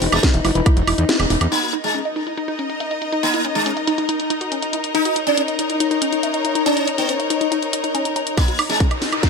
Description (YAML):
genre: psychedelic trance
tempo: 140 BPM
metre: 4/4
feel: straight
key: unclear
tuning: A4 = 440 Hz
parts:
  - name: sitar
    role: melody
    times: 0.0-8.8 s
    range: Ab3 to Eb4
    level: -22 LUFS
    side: right 1 dB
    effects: phaser, sidechain pumping, ping-pong delay
  - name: evolving wavetable pad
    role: sustained chords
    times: 0.0-9.3 s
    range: Eb4 to Eb5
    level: -26 LUFS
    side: left 2 dB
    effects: chorus, built-in reverb, sidechain pumping
  - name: woody wave-folded pluck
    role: riff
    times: 0.0-9.3 s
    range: Db4 to E5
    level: -24 LUFS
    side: moving between left 8 dB and right 3 dB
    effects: chorus, auto-pan, sidechain pumping, tape echo
  - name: fat analog bass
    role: bass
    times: 0.0-1.5 s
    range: E1 to E2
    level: -20 LUFS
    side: equal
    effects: none
  - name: garage drum kit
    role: drums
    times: 0.0-9.3 s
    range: hi-hat, snare drum, woodblock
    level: -23 LUFS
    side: right 1 dB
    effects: low-pass filter on hats, low-pass filter on perc, low-pass filter on snare
  - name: warm studio string section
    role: texture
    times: 0.0-9.3 s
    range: E3 to B5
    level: -26 LUFS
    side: left 3 dB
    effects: sidechain pumping
  - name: electronic kick drum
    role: drums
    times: 0.2-0.7, 8.4-9.3 s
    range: none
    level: -16 LUFS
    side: equal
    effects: none
  - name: riser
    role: sound effects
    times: 8.7-9.3 s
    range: none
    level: -28 LUFS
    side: equal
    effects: none
room: moderate lush hall reverb, RT60 1.8 s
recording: none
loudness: -17 LUFS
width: side -4 dB against mid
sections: 0.0-1.5 A section; 1.5-8.4 B section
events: drop 0.0-1.5; kick drops out 1.1-1.5; band accent 1.1; drum fill 8.4-9.3; riser 8.7-9.3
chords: 0.0 E5; 1.5 Eb5